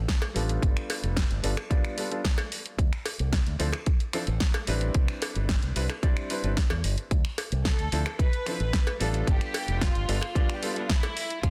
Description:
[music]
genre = nu-disco, nu disco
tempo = 111 BPM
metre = 4/4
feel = straight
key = D dorian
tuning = A4 = 439 Hz
[part]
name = fingered electric bass with an envelope filter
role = bass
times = 0.0-11.5 s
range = F1 to E2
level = -31 LUFS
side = equal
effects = none
[part]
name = electronic kick drum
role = drums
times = 0.1-11.5 s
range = none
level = -28 LUFS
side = equal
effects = studio reverb
[part]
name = house drum kit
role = drums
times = 0.1-11.5 s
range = finger snaps, hi-hat, snare drum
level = -36 LUFS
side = equal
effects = studio reverb, soft clipping on snare
[part]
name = cowbell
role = percussion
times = 0.2-11.1 s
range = none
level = -38 LUFS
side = equal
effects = none
[part]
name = clear baby grand piano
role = accompaniment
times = 0.3-10.8 s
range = F3 to D5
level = -36 LUFS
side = equal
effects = vintage 12-bit sampler grit, sidechain pumping, low-pass filter, delay
[part]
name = rich studio violin section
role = melody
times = 7.7-11.5 s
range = E4 to B4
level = -36 LUFS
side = equal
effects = delay
[sound]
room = small room ambience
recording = dense, heavily limited modern master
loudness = -27 LUFS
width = mono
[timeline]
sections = 0.0-11.5 A section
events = filter sweep on grand piano 0.0-11.5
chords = 0.0 Dm; 0.6 G7; 2.5 D7sus2; 5.0 Cmaj9; 7.1 Dm7; 9.3 G7

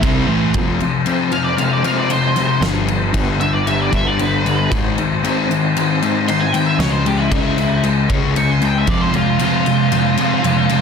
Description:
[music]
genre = quiet-loud alternative rock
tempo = 115 BPM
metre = 4/4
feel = straight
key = unclear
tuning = A4 = 440 Hz
[part]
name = sludgy distorted guitar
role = riff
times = 0.0-10.8 s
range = F2 to C#4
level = -20 LUFS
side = left 8 dB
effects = overdrive
[part]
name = thick fuzz guitar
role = riff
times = 0.0-0.5, 8.9-10.8 s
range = F2 to C4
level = -18 LUFS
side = right 11 dB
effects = distortion
[part]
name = fuzz picked electric bass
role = bass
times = 0.0-9.1 s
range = F1 to F2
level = -21 LUFS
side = right 1 dB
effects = overdrive
[part]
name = oversized low-tuned drum kit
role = drums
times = 0.0-10.8 s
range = crash cymbal, kick drum, snare drum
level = -19 LUFS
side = left 1 dB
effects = none
[part]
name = electric guitar through a small old amp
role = arpeggios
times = 0.5-8.9 s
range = G2 to C#4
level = -23 LUFS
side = right 1 dB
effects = tremolo
[part]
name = octave-fuzz lead guitar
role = melody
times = 1.3-10.8 s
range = E4 to C#6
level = -22 LUFS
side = equal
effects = distortion, analog delay
[sound]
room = light reverb, studio reverb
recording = dense, heavily limited modern master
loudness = -14 LUFS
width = side -6 dB against mid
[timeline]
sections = 0.5-10.8 A section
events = half time 0.5-10.8; lead electric guitar solo 0.5-10.8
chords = 0.0 Am; 0.5 Fm; 2.6 G; 4.7 G#; 6.8 C#m; 8.9 Fm

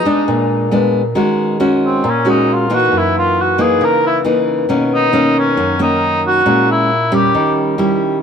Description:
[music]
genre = bossa nova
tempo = 136 BPM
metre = 4/4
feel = straight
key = Eb minor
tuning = A4 = 440 Hz
[part]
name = mellow cor anglais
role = melody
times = 0.0-7.5 s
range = C4 to Bb4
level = -16 LUFS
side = equal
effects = none
[part]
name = nylon-string guitar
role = accompaniment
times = 0.0-8.2 s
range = Gb2 to Gb4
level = -14 LUFS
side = left 1 dB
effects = none
[sound]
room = moderate plate reverb, RT60 3.2 s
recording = none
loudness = -12 LUFS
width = side -7 dB against mid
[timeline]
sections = 0.0-1.2 A section; 1.2-8.2 B section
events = cor anglais solo 1.2-8.2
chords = 0.3 Bb7b9; 1.2 Ebm7; 2.9 Gb6; 4.7 Bmaj9; 6.5 Bbm7b5; 7.3 Eb7b9

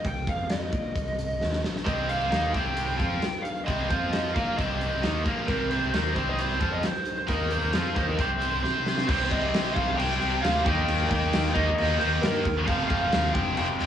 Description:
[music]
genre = hard rock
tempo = 133 BPM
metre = 4/4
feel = straight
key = C minor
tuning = A4 = 439 Hz
[part]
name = lead guitar through a small cranked amp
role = melody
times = 0.0-13.9 s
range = Bb4 to G5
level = -30 LUFS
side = equal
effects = overdrive, cassette tape
[part]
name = huge arena drum kit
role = drums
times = 0.0-13.9 s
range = crash cymbal, hi-hat, kick drum, snare drum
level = -29 LUFS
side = equal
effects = cassette tape
[part]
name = modern bright picked electric bass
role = bass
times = 0.1-13.9 s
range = F1 to C3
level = -31 LUFS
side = equal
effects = none
[part]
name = heavy high-gain guitar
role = riff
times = 1.9-13.9 s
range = F2 to C5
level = -27 LUFS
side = equal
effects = distortion, cassette tape
[sound]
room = small room ambience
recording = home recording on cassette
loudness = -23 LUFS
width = side -9 dB against mid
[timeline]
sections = 0.0-9.1 A section; 9.1-13.9 B section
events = drum fill 1.4-1.9, 8.6-9.1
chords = 0.3 Ebsus2/F; 0.7 Cm; 3.9 F5; 4.4 Cm; 7.3 Eb5; 7.7 Cm; 10.7 Eb; 12.7 F5

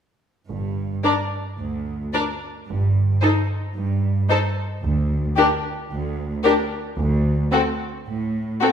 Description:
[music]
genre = quick classical-period movement for symphony orchestra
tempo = 111 BPM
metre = 4/4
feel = straight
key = G minor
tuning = A4 = 440 Hz
[part]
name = rich studio double bass section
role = bass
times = 0.5-7.4 s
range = G1 to D2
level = -26 LUFS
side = right 2 dB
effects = none
[part]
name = warm studio cello section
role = bass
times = 0.5-8.5 s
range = D2 to A2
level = -24 LUFS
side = right 2 dB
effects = none
[part]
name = rich studio violin section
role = melody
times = 1.0-8.7 s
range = A4 to D5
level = -25 LUFS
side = left 6 dB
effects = none
[part]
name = warm studio violin section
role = second line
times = 1.0-8.7 s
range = F#4 to Bb4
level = -25 LUFS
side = left 2 dB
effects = none
[part]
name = rich studio viola section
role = accompaniment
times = 1.0-8.7 s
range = C4 to Eb4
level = -24 LUFS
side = left 1 dB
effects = none
[sound]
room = wet scoring stage reverb, RT60 1.6 s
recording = minimal, uncompressed stereo recording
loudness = -20 LUFS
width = side -8 dB against mid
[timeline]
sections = 0.5-8.7 A section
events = none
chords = 0.5 G5; 2.7 N.C.; 7.0 D5

